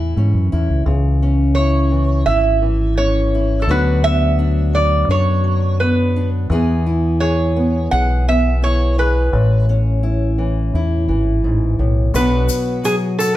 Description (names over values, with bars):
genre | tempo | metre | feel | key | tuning
acoustic folk duo or small band | 85 BPM | 4/4 | straight | B dorian | A4 = 440 Hz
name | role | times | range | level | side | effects
fingerpicked steel-string acoustic guitar | accompaniment | 0.0-13.4 s | G#2 to A4 | -20 LUFS | equal | none
deep dub fingered electric bass | bass | 0.0-12.5 s | G#1 to G#2 | -16 LUFS | equal | none
metal-body resonator slide guitar | melody | 1.5-13.3 s | G#4 to F#5 | -19 LUFS | right 2 dB | none
egg shaker | percussion | 12.2-13.4 s | none | -29 LUFS | left 6 dB | none
room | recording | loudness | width
wet large studio reverb, RT60 1.0 s | heard from further back in the room | -14 LUFS | side -14 dB against mid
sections
0.0-12.1 A section; 12.1-13.4 B section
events
resonator guitar played with a steel bar solo 12.1-13.4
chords
0.0 A; 0.9 C#m; 3.7 Bm/D; 6.5 E; 9.3 A; 12.1 Bm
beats
0.15 | 0.85 1.56 2.27 2.97 | 3.68 4.38 5.09 5.79 | 6.50 7.21 7.91 8.62 | 9.32 10.03 10.74 11.44 | 12.15 12.85